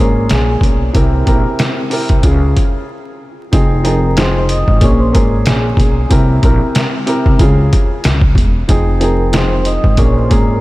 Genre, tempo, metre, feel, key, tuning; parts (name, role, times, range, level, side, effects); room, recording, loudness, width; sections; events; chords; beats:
hip hop, boom-bap hip-hop; 93 BPM; 4/4; swing 54% on 16ths; F minor; A4 = 439 Hz
vibraphone with soft mallets; melody; 0.0-10.6 s; Ab4 to Eb6; -22 LUFS; equal; high-pass filter, low-pass filter, diffuse ambient delay
warm upright piano; accompaniment; 0.0-10.6 s; Bb2 to Bb4; -17 LUFS; equal; cassette tape, high-pass filter, low-pass filter
upright bass; bass; 0.0-10.6 s; E1 to Db2; -14 LUFS; equal
trip hop sampler-style drum kit; drums; 0.3-10.5 s; hi-hat, kick drum, snare drum; -13 LUFS; equal
light reverb, small room ambience; vinyl crackle; -10 LUFS; side -18 dB against mid
0.0-3.5 A section; 3.5-10.6 B section
break 2.9-3.5
0.0 Bbm7; 0.9 C7; 2.2 Db; 3.5 Fm7; 4.8 Bbm7; 6.1 C7; 7.4 Db; 8.7 Fm7; 10.0 Bbm7
0.30 | 0.95 1.59 2.24 2.88 | 3.53 4.17 4.82 5.46 | 6.11 6.75 7.40 8.04 | 8.69 9.33 9.98